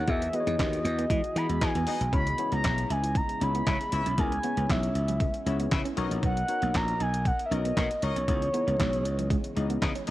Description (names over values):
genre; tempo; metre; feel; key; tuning
early-eighties boogie funk; 117 BPM; 4/4; straight; C# dorian; A4 = 437 Hz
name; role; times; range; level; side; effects
expressive synth lead; melody; 0.0-9.8 s; C#5 to B5; -31 LUFS; equal; chorus, cassette tape
chorused pulse-width pad; sustained chords; 0.0-10.1 s; C#3 to D#5; -39 LUFS; equal; cassette tape
clean electric guitar; riff; 0.0-10.1 s; F#3 to E4; -38 LUFS; right 7 dB; analog chorus, cassette tape
slap bass; bass; 0.0-10.1 s; A#1 to E3; -29 LUFS; equal; none
tine electric piano; accompaniment; 0.1-9.9 s; B3 to D#5; -37 LUFS; left 7 dB; cassette tape
detuned 8-bit digital drum machine; drums; 0.1-10.1 s; handclaps, hi-hat, kick drum, snare drum; -30 LUFS; equal; cassette tape
mellow horn section; second line; 1.4-10.1 s; D#4 to E5; -39 LUFS; left 7 dB; cassette tape
room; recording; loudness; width
digital ambience; home recording on cassette; -25 LUFS; side -16 dB against mid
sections
0.0-10.1 A section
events
none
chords
0.1 Emaj9; 2.1 C#m7; 6.0 Bmaj9; 8.3 C#m9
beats
| 0.08 0.59 1.10 1.62 | 2.13 2.64 3.16 3.67 | 4.18 4.69 5.21 5.72 | 6.23 6.75 7.26 7.77 | 8.28 8.80 9.31 9.82